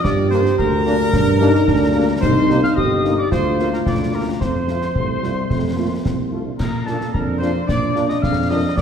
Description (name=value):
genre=military-style march for wind band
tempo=110 BPM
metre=2/4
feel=straight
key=Bb major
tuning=A4 = 435 Hz
part: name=clear trumpet section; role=melody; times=0.0-8.8 s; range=A4 to F5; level=-24 LUFS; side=right 1 dB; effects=none
part: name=mellow euphonium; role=second line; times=0.0-8.8 s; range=G3 to G4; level=-22 LUFS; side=right 1 dB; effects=none
part: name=mellow piccolo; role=second line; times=0.0-8.8 s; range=A5 to F6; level=-27 LUFS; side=left 3 dB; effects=none
part: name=mellow tuba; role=bass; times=0.0-8.8 s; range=G1 to Bb2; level=-21 LUFS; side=right 1 dB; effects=none
part: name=concert snare drum, concert bass drum and clash cymbals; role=drums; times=0.0-8.8 s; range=none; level=-24 LUFS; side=left 1 dB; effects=none
part: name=warm French horn section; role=accompaniment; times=0.3-8.6 s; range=A3 to G4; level=-27 LUFS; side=left 4 dB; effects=none
part: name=warm trombone section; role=sustained chords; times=0.3-8.6 s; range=A3 to F4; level=-30 LUFS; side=right 1 dB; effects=none
room=wet scoring stage reverb, RT60 2.1 s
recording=heard from further back in the room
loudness=-16 LUFS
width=side -7 dB against mid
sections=0.0-8.8 A section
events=none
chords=0.0 Gm; 2.2 Cm7; 3.3 Bb/D; 4.4 F; 6.6 Bb